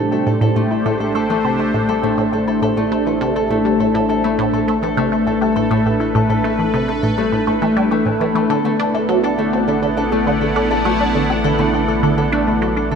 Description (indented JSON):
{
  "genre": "ambient, sequencer-driven space music",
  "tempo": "102 BPM",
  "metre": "4/4",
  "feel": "straight",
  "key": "A dorian",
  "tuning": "A4 = 440 Hz",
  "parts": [
    { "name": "sweeping resonant pad", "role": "sustained chords", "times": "0.0-13.0 s", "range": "A3 to F#5", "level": "-20 LUFS", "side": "right 2 dB", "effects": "chorus" },
    { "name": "Celtic harp", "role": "arpeggios", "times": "0.0-13.0 s", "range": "A2 to A4", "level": "-19 LUFS", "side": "left 5 dB", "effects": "auto-pan, ping-pong delay" },
    { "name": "resonant blip pluck", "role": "riff", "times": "0.0-13.0 s", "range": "A2 to A4", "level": "-20 LUFS", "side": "right 2 dB", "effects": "phaser, ping-pong delay" },
    { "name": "round analog bass", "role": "bass", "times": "0.0-13.0 s", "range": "A1", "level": "-30 LUFS", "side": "equal", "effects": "none" }
  ],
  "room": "moderate lush hall reverb, RT60 2.5 s",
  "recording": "none",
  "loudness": "-15 LUFS",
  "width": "side -6 dB against mid",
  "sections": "0.0-13.0 A section",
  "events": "fade-in on analog synth bass 0.0-13.0; fade-out 11.6-13.0",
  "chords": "0.0 Am7; 8.5 D/A"
}